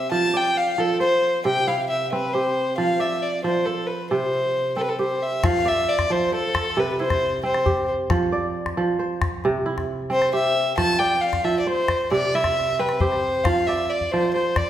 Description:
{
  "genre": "west african traditional, West African string and xylophone music",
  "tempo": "90 BPM (dotted quarters)",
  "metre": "12/8",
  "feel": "straight",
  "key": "F lydian",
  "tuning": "A4 = 441 Hz",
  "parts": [
    { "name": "dark fiddle", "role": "melody", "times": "0.0-14.7 s", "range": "A4 to A5", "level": "-22 LUFS", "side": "left 1 dB", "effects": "none" },
    { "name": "kora", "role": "arpeggios", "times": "0.0-14.7 s", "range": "C3 to D5", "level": "-24 LUFS", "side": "right 3 dB", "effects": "none" },
    { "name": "calabash", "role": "percussion", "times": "5.4-14.7 s", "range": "none", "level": "-26 LUFS", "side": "left 2 dB", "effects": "none" }
  ],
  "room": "wet recital hall reverb, RT60 1.6 s",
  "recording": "recorded in a church or concert hall",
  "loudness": "-20 LUFS",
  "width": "side -11 dB against mid",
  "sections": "0.0-5.4 A section; 5.4-14.7 A section",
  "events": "none",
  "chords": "0.1 F5; 1.4 C; 2.8 F5; 4.1 C5; 5.4 F; 6.8 C; 8.1 F5; 9.4 C; 10.8 F5; 12.1 C; 13.5 F5",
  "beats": "| 0.12 0.78 1.45 2.11 | 2.78 3.44 4.11 4.77 | 5.44 6.11 6.77 7.44 | 8.10 8.77 9.44 10.11 | 10.77 11.44 12.11 12.78 | 13.45 14.12"
}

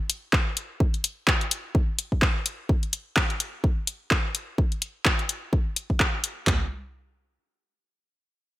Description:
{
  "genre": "minimal techno",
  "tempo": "127 BPM",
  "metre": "4/4",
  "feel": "swing 57% on 16ths",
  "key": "none",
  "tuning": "none",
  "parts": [
    { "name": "house drum kit", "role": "drums", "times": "0.1-6.3 s", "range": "handclaps, hi-hat", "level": "-25 LUFS", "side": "left 1 dB", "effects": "gated reverb" },
    { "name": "house drum kit", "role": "drums", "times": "0.3-6.6 s", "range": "handclaps, kick drum, toms", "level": "-23 LUFS", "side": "equal", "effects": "none" }
  ],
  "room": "light reverb",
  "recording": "bright 1980s-style digital production",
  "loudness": "-23 LUFS",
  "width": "side -16 dB against mid",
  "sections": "0.0-6.5 A section; 6.5-8.6 B section",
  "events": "none",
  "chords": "none",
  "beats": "0.33 | 0.80 1.27 1.75 2.22 | 2.69 3.17 3.64 4.11 | 4.58 5.05 5.53 6.00 | 6.47"
}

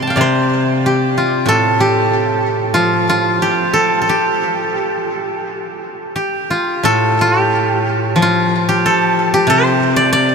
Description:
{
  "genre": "chinese traditional, Chinese solo plucked strings",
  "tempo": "91 BPM",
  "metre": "4/4",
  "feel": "rubato",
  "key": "unclear",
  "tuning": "A4 = 440 Hz",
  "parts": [
    { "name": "steel-string zither", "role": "solo", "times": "0.0-10.3 s", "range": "A2 to C6", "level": "-12 LUFS", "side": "equal", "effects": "ping-pong delay" }
  ],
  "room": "wet huge ambient reverb, RT60 6.7 s",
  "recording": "dreamy mix soaked in reverb",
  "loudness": "-12 LUFS",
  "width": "side -5 dB against mid",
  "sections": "0.0-6.9 A section; 6.9-10.3 B section",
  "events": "none",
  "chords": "none",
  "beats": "0.19 0.83 | 1.47 2.12 2.77 3.43 | 4.10 4.77 5.46 6.16 | 6.85 7.52 8.19 8.84 | 9.50 10.15"
}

